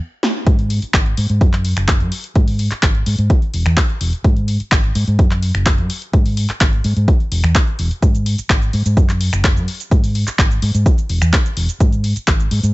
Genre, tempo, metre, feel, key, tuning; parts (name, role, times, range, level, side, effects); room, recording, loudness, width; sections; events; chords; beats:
filtered disco house; 127 BPM; 4/4; straight; A4 = 440 Hz
punchy analog drum machine; drums; 0.2-12.7 s; finger snaps, handclaps, hi-hat, shaker, snare drum; -21 LUFS; equal; overdrive, sidechain pumping on hats, small room ambience, sidechain pumping on perc
hollow-body short-scale fingered electric bass; bass; 0.5-12.7 s; E1 to G#2; -17 LUFS; equal; tube saturation, sidechain pumping, low-pass filter
electronic kick drum; drums; 0.5-12.4 s; -14 LUFS; equal; overdrive, small room ambience
little or no reverb; nothing above 7.9 kHz; -14 LUFS; side -20 dB against mid
0.5-12.7 A section
stop 0.0-0.5; drum fill 0.2; band accent 0.2; filter sweep on fingered electric bass 0.5-12.7
| 0.47 0.94 1.41 1.88 | 2.35 2.83 3.30 3.77 | 4.25 4.72 5.19 5.66 | 6.13 6.61 7.08 7.55 | 8.02 8.50 8.97 9.44 | 9.91 10.39 10.86 11.33 | 11.80 12.28